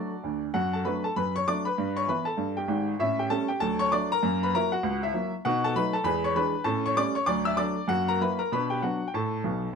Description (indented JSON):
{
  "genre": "jazz, stride piano",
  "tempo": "196 BPM",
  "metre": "4/4",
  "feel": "swing 62% on 8ths",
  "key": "D major",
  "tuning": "A4 = 440 Hz",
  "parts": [
    { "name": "clear upright piano", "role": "solo", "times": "0.0-9.8 s", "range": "G#1 to E6", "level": "-25 LUFS", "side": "equal", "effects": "none" }
  ],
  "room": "moderate studio reverb, RT60 0.8 s",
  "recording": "none",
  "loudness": "-25 LUFS",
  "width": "side -6 dB against mid",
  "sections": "0.5-9.8 A section",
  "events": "upright piano fill 9.4-9.8",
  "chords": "0.0 D; 0.5 D/F#; 1.8 Em/G; 3.0 A7; 3.6 D; 4.2 F#7; 5.4 B7; 6.0 E7; 6.7 A7; 7.3 D; 7.9 F#7; 8.5 Bm; 9.1 Asus2",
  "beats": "0.22 | 0.53 0.84 1.14 1.45 | 1.75 2.06 2.37 2.67 | 2.98 3.29 3.59 3.90 | 4.21 4.51 4.82 5.12 | 5.43 5.74 6.04 6.35 | 6.66 6.96 7.27 7.57 | 7.88 8.19 8.49 8.80 | 9.11 9.41 9.72"
}